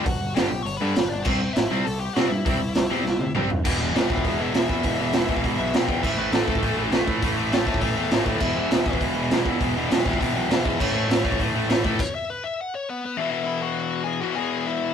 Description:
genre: punk rock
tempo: 202 BPM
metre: 4/4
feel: straight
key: unclear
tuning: A4 = 439 Hz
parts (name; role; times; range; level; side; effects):
- bluesy overdriven lead guitar; melody; 0.0-14.9 s; B3 to C#6; -29 LUFS; left 5 dB; distortion
- cranked stack guitar; riff; 0.0-14.9 s; E2 to C4; -27 LUFS; left 6 dB; overdrive
- crunchy overdriven guitar; riff; 0.0-12.0 s; E2 to C4; -28 LUFS; right 6 dB; none
- growling picked electric bass; bass; 0.1-12.0 s; E1 to C3; -30 LUFS; equal; overdrive
- raw garage drum kit; drums; 0.1-12.1 s; crash cymbal, hi-hat, kick drum, snare drum, toms; -24 LUFS; right 1 dB; none
room: light reverb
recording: rough rehearsal-room recording, warm saturation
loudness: -21 LUFS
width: side -8 dB against mid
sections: 0.0-3.7 A section; 3.7-13.2 B section; 13.2-14.9 C section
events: drum fill 3.1-3.7; lead electric guitar solo 3.7-13.2; stop 12.0-13.2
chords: 0.0 G; 1.3 C; 3.7 E5; 6.0 A; 8.4 E5; 10.8 A; 13.2 E

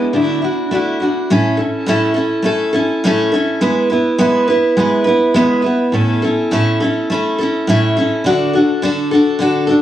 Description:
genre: rock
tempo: 104 BPM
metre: 4/4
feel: straight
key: unclear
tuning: A4 = 438 Hz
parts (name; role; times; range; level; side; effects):
- picked steel-string acoustic guitar; solo; 0.0-9.8 s; A2 to B4; -12 LUFS; equal; cassette tape
room: moderate booth ambience, RT60 0.2 s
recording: home recording on cassette, small room ambience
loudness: -13 LUFS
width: side -12 dB against mid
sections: 0.0-1.3 A section; 1.3-9.8 B section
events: none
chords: 0.1 Dadd9; 1.3 A; 3.6 E/G#; 5.9 A; 8.2 D

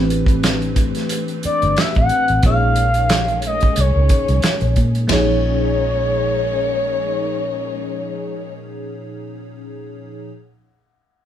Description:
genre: R&B, neo-soul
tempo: 90 BPM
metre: 4/4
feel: swing 55% on 16ths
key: Bb dorian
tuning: A4 = 440 Hz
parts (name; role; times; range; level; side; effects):
- FM electric piano with soft pad layer; accompaniment; 0.0-10.3 s; A2 to Db5; -24 LUFS; equal; chorus
- warm studio string section; sustained chords; 0.0-8.5 s; Bb2 to Db5; -29 LUFS; equal; none
- vintage muted fingered electric bass; bass; 0.0-9.1 s; G1 to Bb2; -20 LUFS; equal; none
- warm soul drum kit; drums; 0.1-5.3 s; finger snaps, hi-hat, kick drum, ride cymbal, snare drum, toms; -19 LUFS; right 1 dB; none
- expressive portamento lead; melody; 1.5-8.5 s; Db5 to Gb5; -20 LUFS; left 2 dB; chorus
room: moderate studio reverb, RT60 0.8 s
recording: band playing live in one room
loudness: -15 LUFS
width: side -10 dB against mid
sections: 0.0-5.1 A section; 5.1-7.8 B section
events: none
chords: 0.0 Am11; 2.4 Bbm11; 5.1 Bbm7

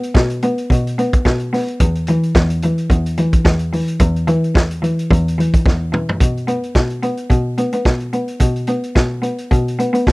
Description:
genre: disco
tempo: 109 BPM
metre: 4/4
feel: swing 56% on 16ths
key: unclear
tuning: A4 = 438 Hz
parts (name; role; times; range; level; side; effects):
- warm cello; bass; 0.0-10.1 s; E2 to B3; -17 LUFS; equal; none
- vintage drum kit; drums; 0.0-10.1 s; hi-hat, kick drum, snare drum, toms; -16 LUFS; equal; none
room: little or no reverb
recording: dry, close 1970s-style studio recording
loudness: -14 LUFS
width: side -23 dB against mid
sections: 0.0-6.2 A section; 6.2-10.1 B section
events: drum fill 5.7-6.2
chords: none

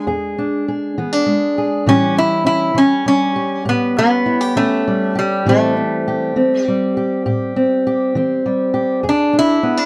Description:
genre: acoustic country blues, solo or duo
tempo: 67 BPM (dotted quarters)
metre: 12/8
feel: straight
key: unclear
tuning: A4 = 437 Hz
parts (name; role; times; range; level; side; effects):
- lap resonator guitar; melody; 0.0-9.9 s; G3 to E4; -18 LUFS; equal; none
- fingerpicked steel-string acoustic guitar; accompaniment; 0.0-9.9 s; E2 to G#4; -20 LUFS; equal; none
room: light reverb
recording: dark, warm production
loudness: -17 LUFS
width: mono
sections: 0.0-9.9 A section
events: none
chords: 0.0 E7; 1.9 A7; 5.5 Am7; 9.0 E7

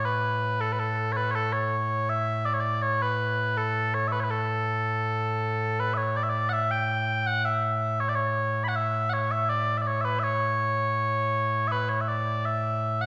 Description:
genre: scottish traditional, Scottish pipe music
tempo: 81 BPM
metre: 2/4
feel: straight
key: A mixolydian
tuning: A4 = 440 Hz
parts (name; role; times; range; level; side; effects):
- mellow small bagpipes; solo; 0.0-13.1 s; A2 to B5; -27 LUFS; equal; none
room: wet recital hall reverb, RT60 1.6 s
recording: recorded in a church or concert hall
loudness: -27 LUFS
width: mono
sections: 0.0-5.8 A section; 5.8-13.1 B section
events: none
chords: none

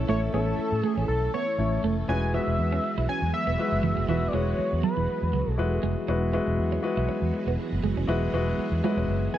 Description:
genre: pop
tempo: 120 BPM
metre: 4/4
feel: swing 55% on 16ths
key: unclear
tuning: A4 = 440 Hz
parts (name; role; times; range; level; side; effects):
- warm grand piano; accompaniment; 0.0-9.4 s; F#3 to C#5; -30 LUFS; left 4 dB; none
- string machine, violins; sustained chords; 0.0-9.4 s; E3 to A4; -33 LUFS; right 2 dB; ensemble chorus
- twelve-string electric guitar; riff; 0.0-9.4 s; E3 to E4; -31 LUFS; right 8 dB; lush chorus
- vintage muted fingered electric bass; bass; 0.0-9.3 s; E1 to A2; -27 LUFS; equal; none
- octave-doubled lead; melody; 0.1-5.8, 9.3-9.4 s; A4 to G#5; -29 LUFS; equal; chorus, slapback echo
room: little or no reverb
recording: dry, close 1970s-style studio recording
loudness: -24 LUFS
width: side -12 dB against mid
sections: 0.0-6.1 A section; 6.1-9.4 B section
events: none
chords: 0.0 A; 2.1 Eadd9

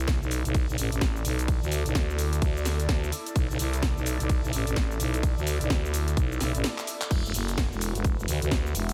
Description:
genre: bass house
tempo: 128 BPM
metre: 4/4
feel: swing 61% on 16ths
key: unclear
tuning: A4 = 442 Hz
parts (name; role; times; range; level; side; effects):
- growling FM bass; bass; 0.0-8.9 s; E1 to D2; -30 LUFS; equal; tube saturation, sidechain pumping
- airy breathy pad; texture; 0.0-8.9 s; E4 to E5; -40 LUFS; equal; chorus, phaser, sidechain pumping
- electronic kick drum; drums; 0.1-8.6 s; none; -28 LUFS; equal; none
- house drum kit; drums; 0.1-8.9 s; crash cymbal, handclaps, hi-hat, ride cymbal, shaker, snare drum; -36 LUFS; equal; none
room: little or no reverb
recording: none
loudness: -27 LUFS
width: mono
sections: 0.0-8.9 A section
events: break 6.6-7.1; drum fill 6.8-7.1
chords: 0.0 Bm; 7.1 Esus2

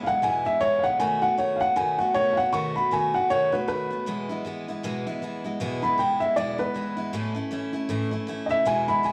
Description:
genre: rock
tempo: 156 BPM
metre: 4/4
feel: swing 59% on 8ths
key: E major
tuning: A4 = 439 Hz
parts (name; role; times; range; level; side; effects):
- dark upright piano; melody; 0.0-9.1 s; B4 to C#6; -25 LUFS; equal; slapback echo
- picked steel-string acoustic guitar; accompaniment; 0.0-9.1 s; E2 to F#4; -32 LUFS; equal; slapback echo
room: light reverb, studio reverb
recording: live gig heard through the venue's PA, club reverb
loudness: -25 LUFS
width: mono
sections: 0.0-5.6 A section; 5.6-9.1 B section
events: none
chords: 0.0 E; 1.0 B7; 4.1 E; 7.1 A

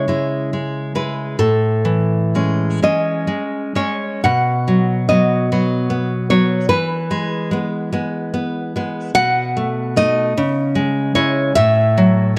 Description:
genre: romantic piece for solo classical guitar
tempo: 40-52 BPM (dotted quarters)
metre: 6/8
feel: rubato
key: E major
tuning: A4 = 440 Hz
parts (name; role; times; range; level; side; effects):
- nylon-string guitar; solo; 0.0-12.4 s; A2 to F#5; -18 LUFS; equal; none
room: moderate spring reverb, RT60 2.6 s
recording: cassette tape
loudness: -18 LUFS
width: mono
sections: 0.0-12.4 A section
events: none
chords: 0.0 C#m; 1.4 Amaj7; 4.3 B; 6.7 E; 9.1 B7; 10.4 C#m; 11.6 F#m7/A

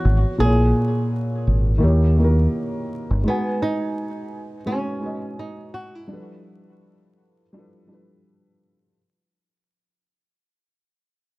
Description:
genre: lo-fi hip hop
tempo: 84 BPM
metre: 4/4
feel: swing 59% on 16ths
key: unclear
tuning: A4 = 444 Hz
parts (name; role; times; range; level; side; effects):
- flamenco guitar; melody; 0.0-8.2 s; B3 to G#4; -27 LUFS; right 1 dB; low-pass filter, analog delay
- felt-muted upright piano; accompaniment; 0.0-9.0 s; A#2 to G#5; -23 LUFS; equal; cassette tape, low-pass filter
- deep dub fingered electric bass; bass; 0.0-3.2 s; G1 to D#2; -17 LUFS; equal; none
room: light reverb, small room ambience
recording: vinyl crackle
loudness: -18 LUFS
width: side -21 dB against mid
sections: 0.0-9.0 A section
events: fade-out 0.0-9.0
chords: 0.4 A#m7b5; 1.8 D#7b9; 3.3 G#m7; 6.1 G13

